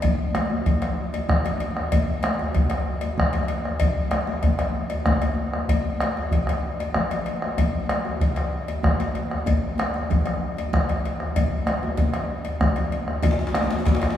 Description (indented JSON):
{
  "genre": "west african traditional, West African drum ensemble",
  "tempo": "127 BPM (dotted quarters)",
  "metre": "12/8",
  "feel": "straight",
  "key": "none",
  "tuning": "none",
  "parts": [
    { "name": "bombo", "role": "percussion", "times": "0.0-14.2 s", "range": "none", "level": "-23 LUFS", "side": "equal", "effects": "none" },
    { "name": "congas", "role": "percussion", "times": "0.0-14.0 s", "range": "none", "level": "-29 LUFS", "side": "equal", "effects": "none" },
    { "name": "cowbell", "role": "percussion", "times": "0.0-14.2 s", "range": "none", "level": "-32 LUFS", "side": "left 4 dB", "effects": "none" },
    { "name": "djembe", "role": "percussion", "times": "0.0-14.0 s", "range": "none", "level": "-29 LUFS", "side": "left 3 dB", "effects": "none" },
    { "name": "djembe", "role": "percussion", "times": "13.2-14.2 s", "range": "none", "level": "-28 LUFS", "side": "left 2 dB", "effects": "none" }
  ],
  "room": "wet church reverb, RT60 3.4 s",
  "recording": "recorded in a church or concert hall, small room ambience",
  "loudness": "-21 LUFS",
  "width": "side -10 dB against mid",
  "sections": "0.0-13.2 A section",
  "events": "none",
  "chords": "none",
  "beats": "| 0.03 0.50 0.97 1.45 | 1.92 2.39 2.86 3.33 | 3.81 4.28 4.75 5.22 | 5.69 6.16 6.64 7.11 | 7.58 8.05 8.52 8.99 | 9.46 9.94 10.41 10.88 | 11.35 11.82 12.29 12.76 | 13.23 13.71"
}